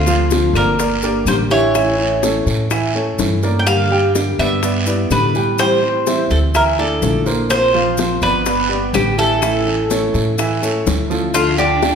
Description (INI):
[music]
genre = latin, Cuban son and guajira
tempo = 125 BPM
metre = 4/4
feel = straight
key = D minor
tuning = A4 = 440 Hz
[part]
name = Cuban tres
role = melody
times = 0.0-11.9 s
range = F4 to G5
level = -18 LUFS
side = equal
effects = none
[part]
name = nylon-string guitar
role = accompaniment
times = 0.0-11.9 s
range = B2 to G4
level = -21 LUFS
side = left 4 dB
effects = none
[part]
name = upright bass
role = bass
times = 0.0-11.9 s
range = G1 to A2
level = -21 LUFS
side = equal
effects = none
[part]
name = clear baby grand piano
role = arpeggios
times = 0.1-11.9 s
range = D3 to G5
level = -20 LUFS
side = right 4 dB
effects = none
[part]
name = bongos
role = percussion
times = 0.1-11.9 s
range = none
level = -25 LUFS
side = left 6 dB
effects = none
[part]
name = maracas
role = percussion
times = 0.1-11.9 s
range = none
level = -30 LUFS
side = left 5 dB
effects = none
[part]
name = guiro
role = percussion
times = 0.3-11.9 s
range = none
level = -28 LUFS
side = right 4 dB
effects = none
[part]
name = claves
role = percussion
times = 0.6-11.6 s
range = none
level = -30 LUFS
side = left 4 dB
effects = none
[part]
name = warm symphonic violin section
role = second line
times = 11.3-11.9 s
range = A3 to D4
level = -23 LUFS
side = left 1 dB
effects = none
[sound]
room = wet recital hall reverb, RT60 1.4 s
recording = recorded in a church or concert hall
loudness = -14 LUFS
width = side -7 dB against mid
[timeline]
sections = 0.0-11.3 A section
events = none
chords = 0.0 Dm7; 0.8 Gm; 1.8 A; 3.7 Gm; 4.6 Em7/G; 5.6 Am7; 6.5 Dmadd9; 7.5 Bbsus2; 8.5 Gadd9; 9.4 A; 11.3 Dm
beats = 0.31 0.79 1.27 | 1.75 2.23 2.71 3.19 | 3.67 4.15 4.63 5.11 | 5.59 6.07 6.55 7.03 | 7.51 7.99 8.47 8.95 | 9.43 9.90 10.38 10.86 | 11.34 11.82